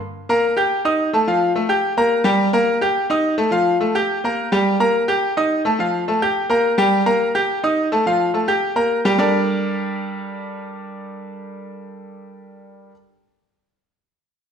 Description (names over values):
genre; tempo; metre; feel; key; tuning
latin; 212 BPM; 4/4; straight; G minor; A4 = 441 Hz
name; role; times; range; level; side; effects
bright concert grand piano; solo; 0.0-12.9 s; F3 to G6; -17 LUFS; equal; none
room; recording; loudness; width
moderate large studio reverb, RT60 1.2 s; none; -16 LUFS; side -7 dB against mid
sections
0.1-9.2 A section; 9.2-11.4 B section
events
none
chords
0.1 Gm; 0.7 Eb; 1.3 F; 1.8 Gm; 3.0 Eb; 3.5 F; 4.1 Gm; 5.2 Eb; 5.8 F; 6.4 Gm; 7.5 Eb; 8.1 F; 8.6 Gm; 9.2 Gmadd9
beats
| 0.14 0.42 0.71 0.99 | 1.27 1.55 1.84 2.12 | 2.40 2.68 2.96 3.25 | 3.53 3.81 4.09 4.38 | 4.66 4.94 5.22 5.51 | 5.79 6.07 6.35 6.64 | 6.92 7.20 7.49 7.77 | 8.05 8.33 8.62 8.90 | 9.18 9.46 9.75 10.03 | 10.31 10.60 10.88 11.16